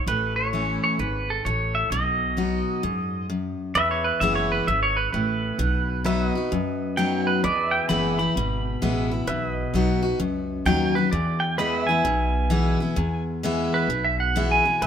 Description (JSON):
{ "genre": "honky-tonk and classic country", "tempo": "130 BPM", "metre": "4/4", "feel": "swing 64% on 8ths", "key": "E major", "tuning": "A4 = 441 Hz", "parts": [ { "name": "pedal steel guitar", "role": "melody", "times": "0.0-14.9 s", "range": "A4 to B5", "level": "-24 LUFS", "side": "right 2 dB", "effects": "none" }, { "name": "picked steel-string acoustic guitar", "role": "accompaniment", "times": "0.0-14.9 s", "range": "E2 to F#4", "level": "-25 LUFS", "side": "left 3 dB", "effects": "none" }, { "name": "upright bass", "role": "bass", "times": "0.1-14.9 s", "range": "F#1 to F#2", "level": "-28 LUFS", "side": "right 1 dB", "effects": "none" }, { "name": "pedal steel guitar", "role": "sustained chords", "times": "3.8-14.9 s", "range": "B4 to E5", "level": "-31 LUFS", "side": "right 2 dB", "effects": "none" } ], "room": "light reverb", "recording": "minimal, uncompressed stereo recording", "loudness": "-21 LUFS", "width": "side -8 dB against mid", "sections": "0.0-3.8 A section; 3.8-14.9 B section", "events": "pedal steel guitar solo 3.8-14.9", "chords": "0.1 A; 1.9 B; 3.8 E; 5.6 B; 7.4 E; 9.3 B; 11.1 E" }